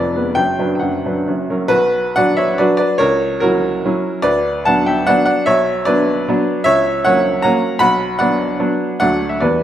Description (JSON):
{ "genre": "classical, romantic triple-time dance for piano with dotted rhythms", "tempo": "122-165 BPM", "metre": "3/4", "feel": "rubato", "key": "B minor", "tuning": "A4 = 437 Hz", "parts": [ { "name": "bright baby grand piano", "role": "solo", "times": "0.0-9.6 s", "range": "F1 to B5", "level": "-13 LUFS", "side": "equal", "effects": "none" } ], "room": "moderate recital hall reverb, RT60 1.4 s", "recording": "none", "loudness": "-13 LUFS", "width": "side -11 dB against mid", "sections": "0.0-1.7 A section; 1.7-9.6 B section", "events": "none", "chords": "0.4 Bm/F#; 1.3 F#; 1.7 Bm; 3.0 F#7/C#; 4.3 Bm/D; 5.5 Bm; 6.7 F#7/C#; 7.8 Bm; 9.0 D" }